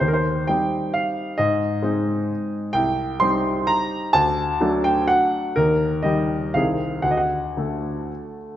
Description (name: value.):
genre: classical, romantic triple-time dance for piano with dotted rhythms.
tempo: 110-142 BPM.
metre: 3/4.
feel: rubato.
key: unclear.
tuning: A4 = 440 Hz.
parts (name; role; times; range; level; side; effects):
clear grand piano; solo; 0.0-8.6 s; C2 to C6; -19 LUFS; equal; none.
room: wet recital hall reverb, RT60 1.6 s.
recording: nothing above 7.8 kHz.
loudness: -19 LUFS.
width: side -12 dB against mid.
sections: 0.0-8.6 A section.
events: none.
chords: 0.0 Cm/Eb; 1.4 Ab; 2.7 Cm; 4.1 D; 5.6 Eb; 6.5 Ab/C; 7.0 D.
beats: | 0.01 0.47 0.94 | 1.38 1.83 2.30 | 2.75 3.21 3.69 | 4.14 4.60 5.09 | 5.56 6.03 6.54 | 7.03 7.57 8.10.